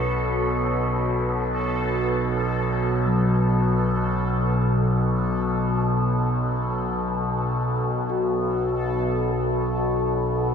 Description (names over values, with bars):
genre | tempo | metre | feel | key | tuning
dark ambient drone | free time | none | none | unclear | A4 = 438 Hz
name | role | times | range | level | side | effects
dark analog pad | sustained chords | 0.0-10.5 s | F#4 to F#5 | -34 LUFS | left 1 dB | chorus
overtone-sweeping drone | drone | 0.0-10.5 s | B1 to B2 | -23 LUFS | right 1 dB | chorus, built-in reverb
bubbling stepped-filter texture | texture | 0.0-10.5 s | A4 | -29 LUFS | left 1 dB | chorus, built-in reverb
gamelan-type bronze metallophone | arpeggios | 3.1-10.5 s | F#3 to F#4 | -27 LUFS | left 5 dB | ping-pong delay
room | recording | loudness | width
wet cathedral reverb, RT60 6.6 s | none | -21 LUFS | side -7 dB against mid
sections
0.0-10.5 A section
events
fade-out on analog synth pad 0.0-10.5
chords
0.0 Bsus2